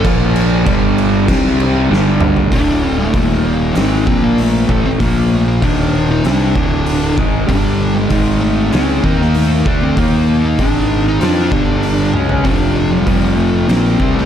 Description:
stoner and doom metal; 97 BPM; 4/4; straight; A4 = 441 Hz
fuzz lead guitar; melody; 0.0-14.3 s; G3 to Eb4; -18 LUFS; left 1 dB; distortion, tape echo
fuzz guitar; riff; 0.0-14.3 s; D2 to F4; -15 LUFS; equal; distortion
fuzz fingered electric bass; bass; 0.0-14.3 s; D1 to F2; -18 LUFS; equal; overdrive
oversized low-tuned drum kit; drums; 0.0-14.2 s; crash cymbal, hi-hat, kick drum, snare drum, toms; -18 LUFS; equal
light reverb, small room ambience; -11 LUFS; side -9 dB against mid
0.0-2.5 A section; 2.5-14.3 B section
drum fill 1.9-2.5, 12.1-12.4
0.0 Bb5; 0.7 G5; 1.3 C5; 1.9 G5; 2.5 D5; 3.1 Eb5; 3.8 G#; 4.1 Bb5; 4.7 A5; 5.0 Bb5; 5.6 Eb5; 6.2 D5; 7.5 G5; 8.1 G#5; 8.7 G#add11/C#; 9.0 Eb5; 9.7 Amadd11/D; 10.0 Eb5; 10.6 G#5; 11.2 G5; 12.4 F5
| 0.05 0.67 1.28 1.90 | 2.52 3.14 3.76 4.38 | 5.00 5.63 6.25 6.87 | 7.49 8.11 8.73 9.35 | 9.97 10.59 11.21 11.83 | 12.45 13.07 13.69

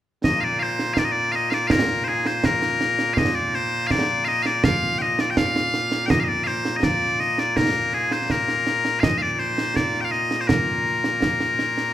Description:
scottish traditional, Scottish pipe music; 82 BPM; 2/4; straight; Bb major; A4 = 440 Hz
loud bright bagpipes; melody; 0.2-11.9 s; Bb2 to G5; -21 LUFS; left 2 dB
concert snare drum and concert bass drum; drums; 0.2-11.9 s; -24 LUFS; right 2 dB
moderate recital hall reverb, RT60 1.4 s; minimal, uncompressed stereo recording; -19 LUFS; side -12 dB against mid
0.2-11.9 A section
| 0.25 0.98 | 1.71 2.44 | 3.17 3.91 | 4.64 5.37 | 6.10 6.83 | 7.56 8.30 | 9.03 9.76 | 10.49 11.22

